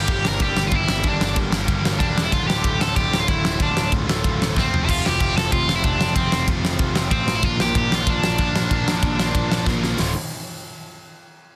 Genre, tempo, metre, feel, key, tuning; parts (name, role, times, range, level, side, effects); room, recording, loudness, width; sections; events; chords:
punk rock; 188 BPM; 4/4; straight; D minor; A4 = 440 Hz
cranked stack guitar; melody; 0.0-9.6 s; C4 to Bb4; -25 LUFS; equal; overdrive
distorted electric guitar; riff; 0.0-10.1 s; D2 to Bb4; -28 LUFS; equal; overdrive
fuzz picked electric bass; bass; 0.0-10.1 s; D1 to Bb1; -27 LUFS; equal; overdrive
big rock drum kit; drums; 0.1-10.1 s; crash cymbal, hi-hat, kick drum, ride cymbal, snare drum, toms; -25 LUFS; equal
little or no reverb; dense, heavily limited modern master; -20 LUFS; mono
0.0-10.0 A section; 10.0-11.3 B section
drum fill 4.6-4.9, 9.7-10.0
0.0 Gm; 2.3 Dm; 4.7 F; 7.4 Bb; 10.0 Dm